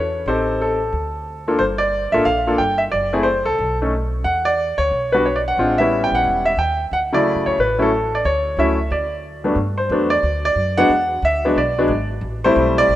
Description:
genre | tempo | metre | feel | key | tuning
jazz piano trio | 180 BPM | 4/4 | swing 61% on 8ths | D major, G major from 9.6 s | A4 = 440 Hz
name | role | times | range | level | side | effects
bright concert grand piano | melody | 0.0-13.0 s | G2 to G5 | -17 LUFS | equal | none
upright bass | bass | 0.0-13.0 s | E1 to G2 | -25 LUFS | equal | none
room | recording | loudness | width
moderate lush hall reverb, RT60 2.4 s | rough home demo mix | -16 LUFS | side -13 dB against mid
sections
0.0-9.6 A section; 9.6-13.0 B section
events
none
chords
0.3 Am7b5; 0.9 D5; 1.6 Gm7; 2.9 F#dim; 3.6 B7(no3); 4.3 E7(no3); 5.6 A7; 6.9 Dmaj7; 8.9 N.C.; 9.6 Gmaj7; 10.9 E7; 12.2 Am9

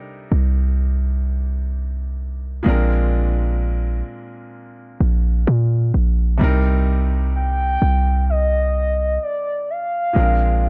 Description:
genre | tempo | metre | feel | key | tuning
contemporary R&B | 64 BPM | 4/4 | straight | C minor | A4 = 439 Hz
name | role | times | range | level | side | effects
clear grand piano | accompaniment | 0.0-10.7 s | Bb2 to Bb4 | -29 LUFS | equal | none
warm 808-style bass | bass | 0.3-10.7 s | Bb1 to Bb2 | -20 LUFS | equal | none
gliding portamento lead | melody | 7.4-10.7 s | D5 to G5 | -24 LUFS | equal | chorus
room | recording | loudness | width
light reverb, small room reverb | dark, warm production | -19 LUFS | mono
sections
0.0-10.7 A section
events
none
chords
0.0 Cm9; 2.7 Bb7; 6.4 Cm7; 10.2 Bb7

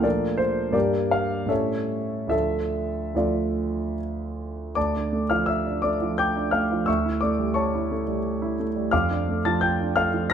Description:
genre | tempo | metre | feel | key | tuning
classical, romantic character piece for solo piano | 69-90 BPM | 3/4 | rubato | D minor | A4 = 440 Hz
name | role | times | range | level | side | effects
warm concert grand piano | solo | 0.0-10.3 s | D2 to Bb6 | -22 LUFS | equal | none
room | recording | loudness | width
moderate recital hall reverb, RT60 1.5 s | close, detailed microphones | -22 LUFS | side -8 dB against mid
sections
0.0-4.8 A section; 4.8-10.3 A section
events
none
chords
0.0 Bbmaj7; 0.7 Gm; 1.5 A7; 2.3 Dm; 6.9 A7/D; 8.9 Dm/F

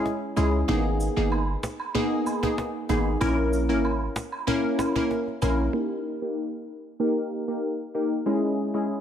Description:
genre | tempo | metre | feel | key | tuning
dancehall | 95 BPM | 4/4 | straight | unclear | A4 = 440 Hz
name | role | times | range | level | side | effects
glassy wavetable pluck | accompaniment | 0.0-8.9 s | G#3 to A#4 | -25 LUFS | left 1 dB | chorus, low-pass filter
cajon | drums | 0.1-5.6 s | none | -33 LUFS | right 1 dB | none
hard-hitting 808-style bass | bass | 0.4-5.7 s | G1 to C#2 | -26 LUFS | right 1 dB | none
cabasa and woodblock | percussion | 0.4-5.6 s | none | -36 LUFS | right 5 dB | none
room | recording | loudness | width
light reverb, small room ambience | none | -23 LUFS | side -9 dB against mid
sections
0.0-5.7 A section; 5.7-9.0 B section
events
filter sweep on synth pluck 5.7-9.0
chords
0.0 C#m; 0.7 G#madd9; 3.2 A#dim; 5.7 D#; 8.3 C#m

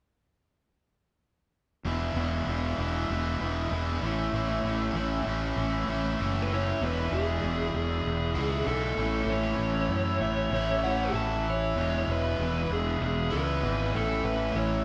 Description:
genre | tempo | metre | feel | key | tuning
rock | 97 BPM | 4/4 | straight | E major | A4 = 441 Hz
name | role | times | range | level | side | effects
cranked stack guitar | riff | 1.9-14.8 s | E2 to E4 | -32 LUFS | equal | overdrive
fuzz fingered electric bass | bass | 1.9-14.8 s | E1 to F#2 | -33 LUFS | equal | overdrive
fuzz lead guitar | melody | 6.4-14.8 s | G#4 to C#5 | -35 LUFS | equal | distortion
overdriven slide guitar | second line | 10.2-11.5 s | E5 to A5 | -36 LUFS | equal | none
room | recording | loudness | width
wet large studio reverb, RT60 1.4 s | band playing live in one room | -29 LUFS | mono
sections
1.9-6.8 A section; 6.8-14.8 B section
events
none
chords
1.9 E; 4.0 A; 6.8 E; 9.0 A; 11.8 E; 13.9 A

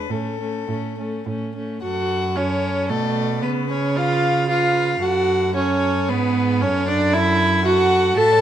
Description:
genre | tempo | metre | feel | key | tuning
quick classical-period movement for string quartet | 112 BPM | 3/4 | rubato | F# minor | A4 = 443 Hz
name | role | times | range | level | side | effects
rich violin | melody | 0.0-8.4 s | G#4 to E5 | -30 LUFS | left 11 dB | none
warm violin | second line | 0.0-8.4 s | C#4 to A5 | -26 LUFS | left 4 dB | none
warm viola | accompaniment | 0.0-8.4 s | A3 to A4 | -20 LUFS | right 1 dB | none
rich cello | bass | 0.1-8.4 s | F#2 to C#3 | -24 LUFS | right 4 dB | none
room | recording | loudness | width
moderate scoring stage reverb, RT60 1.6 s | close, detailed microphones | -18 LUFS | side -10 dB against mid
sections
0.0-1.8 A section; 1.8-8.4 B section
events
none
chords
0.1 A; 1.8 F#m; 2.9 Bm7; 3.4 C#7; 5.0 F#m; 6.1 G#m; 6.6 F#m

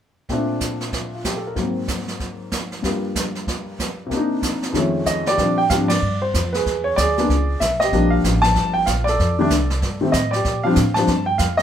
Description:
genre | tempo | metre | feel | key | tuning
jazz piano trio | 189 BPM | 4/4 | swing 62% on 8ths | Bb major | A4 = 440 Hz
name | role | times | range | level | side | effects
warm baby grand piano | melody | 0.3-11.6 s | F2 to A5 | -19 LUFS | left 1 dB | none
jazz brush drum kit | drums | 0.3-11.6 s | brushed snare drum, hi-hat, kick drum, ride cymbal, snare drum | -25 LUFS | right 2 dB | none
upright bass | bass | 5.4-11.6 s | G1 to Bb2 | -22 LUFS | equal | none
room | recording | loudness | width
moderate studio reverb, RT60 0.6 s | band playing live in one room | -18 LUFS | side -9 dB against mid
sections
0.3-5.4 A section; 5.4-11.6 B section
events
band accent 5.9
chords
0.3 Bbmaj9; 1.6 Ab9; 2.8 Gm7; 4.1 Cm9; 4.7 F7alt; 5.4 Bb69; 6.7 E7; 7.9 Gm9; 9.2 F13; 10.4 Bb6

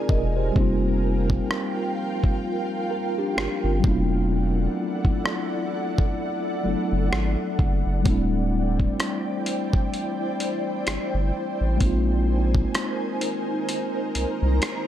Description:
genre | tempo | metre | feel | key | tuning
contemporary R&B | 64 BPM | 4/4 | swing 58% on 16ths | unclear | A4 = 442 Hz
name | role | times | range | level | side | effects
mellow tine electric piano | accompaniment | 0.0-14.9 s | F#3 to Eb5 | -27 LUFS | left 1 dB | medium stereo tremolo
ethereal airy pad | sustained chords | 0.0-14.9 s | C4 to Bb5 | -29 LUFS | equal | ensemble chorus, built-in reverb, tremolo
saturated sub bass | bass | 0.1-14.6 s | D1 to C2 | -24 LUFS | equal | none
dusty soul sampler-style drum kit | drums | 0.1-14.9 s | hi-hat, kick drum, rim click | -24 LUFS | equal | none
room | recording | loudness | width
little or no reverb | none | -22 LUFS | side -11 dB against mid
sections
0.0-14.9 A section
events
none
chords
0.0 Bb9sus4; 0.6 F9sus4; 3.8 E9sus4; 8.1 D9sus4; 11.8 Bb9sus4

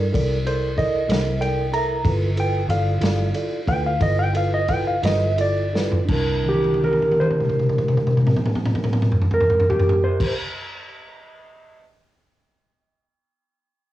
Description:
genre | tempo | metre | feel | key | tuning
slow blues | 56-63 BPM (dotted quarters) | 12/8 | straight | C mixolydian | A4 = 440 Hz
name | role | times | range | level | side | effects
mellow tine electric piano | accompaniment | 0.0-10.3 s | D4 to A5 | -27 LUFS | right 2 dB | medium stereo tremolo, cassette tape
vintage muted fingered electric bass | bass | 0.0-10.3 s | G1 to G2 | -23 LUFS | equal | none
vintage drum kit | drums | 0.1-11.8 s | crash cymbal, kick drum, ride cymbal, snare drum, toms | -23 LUFS | equal | cassette tape
clean lap steel guitar | melody | 0.5-10.3 s | G4 to Bb5 | -22 LUFS | equal | cassette tape
room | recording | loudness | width
little or no reverb | home recording on cassette, small room reverb | -18 LUFS | side -14 dB against mid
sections
0.0-6.1 A section; 6.1-10.4 B section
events
electric slide guitar solo 0.0-6.1; slowing down 0.8-6.1; drum fill 5.7-6.1, 6.4-10.2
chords
0.0 C13; 2.0 G13; 6.1 C13

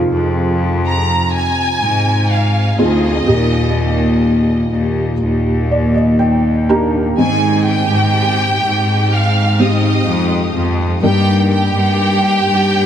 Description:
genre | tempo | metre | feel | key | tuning
pop ballad | 62 BPM | 4/4 | straight | unclear | A4 = 440 Hz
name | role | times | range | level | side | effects
felt-muted upright piano | accompaniment | 0.0-12.9 s | G2 to Bb5 | -17 LUFS | equal | ensemble chorus
clear studio cello section | bass | 0.0-12.9 s | D2 to Ab2 | -15 LUFS | left 1 dB | none
warm studio violin section | melody | 0.9-12.9 s | G4 to F6 | -18 LUFS | equal | none
room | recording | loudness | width
moderate huge ambient reverb, RT60 7.1 s | dreamy mix soaked in reverb | -12 LUFS | side -9 dB against mid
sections
0.0-7.2 A section; 7.2-12.9 B section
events
felt piano fill 5.2-7.2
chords
0.0 Fm7; 3.3 Ebmaj7; 7.2 Abmaj7; 11.0 Ebmaj7/G

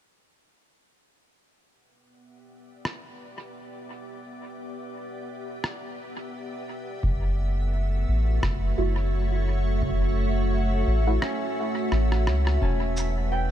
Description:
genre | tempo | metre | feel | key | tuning
ambient dub | 86 BPM | 4/4 | swing 57% on 16ths | E dorian | A4 = 439 Hz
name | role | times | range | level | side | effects
soft additive organ-like pad | sustained chords | 2.2-13.5 s | A3 to D6 | -31 LUFS | right 1 dB | ensemble chorus, built-in reverb
electronic rim click and shaker | drums | 2.9-13.1 s | none | -34 LUFS | equal | studio reverb, dub echo
soft dub sub bass | bass | 7.0-13.5 s | E1 to C#2 | -24 LUFS | equal | none
electronic kick drum | drums | 7.0-12.8 s | none | -30 LUFS | equal | none
filtered dub chord stab | stabs | 8.8-11.2 s | A3 to F#4 | -33 LUFS | right 2 dB | none
Celtic harp | arpeggios | 11.2-13.5 s | C#4 to A5 | -33 LUFS | right 1 dB | tape echo
room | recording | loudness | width
little or no reverb | none | -23 LUFS | side -11 dB against mid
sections
1.5-12.6 A section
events
fade-in on ambient pad 1.5-12.6; kick drops out 11.2-12.6; drum fill 11.9-12.6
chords
1.5 Em7; 7.0 F#m7; 12.6 Em7

